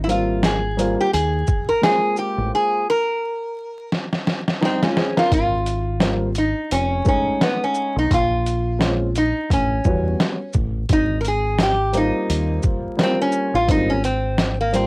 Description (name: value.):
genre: hip hop, jazz-hop.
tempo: 86 BPM.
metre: 4/4.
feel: swing 57% on 16ths.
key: Ab major.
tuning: A4 = 440 Hz.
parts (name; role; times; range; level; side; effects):
metal-body resonator slide guitar; melody; 0.0-14.9 s; Bb3 to Bb4; -20 LUFS; equal; cassette tape.
deep dub fingered electric bass; bass; 0.0-14.9 s; F1 to E2; -23 LUFS; equal; none.
dark upright piano; accompaniment; 0.1-14.9 s; G3 to C5; -24 LUFS; equal; cassette tape.
trip hop sampler-style drum kit; drums; 0.1-14.9 s; hi-hat, kick drum, shaker, snare drum; -21 LUFS; equal; cassette tape.
room: light reverb.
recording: home recording on cassette, vinyl crackle.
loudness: -17 LUFS.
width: side -27 dB against mid.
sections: 0.0-5.3 A section; 5.3-14.9 B section.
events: resonator guitar played with a steel bar solo 0.0-5.3; silent gap 2.5-5.3; drum fill 3.9-5.3.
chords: 0.0 Abmaj13; 6.7 F7alt; 8.1 Bbm9; 9.5 A13; 10.9 Abmaj13.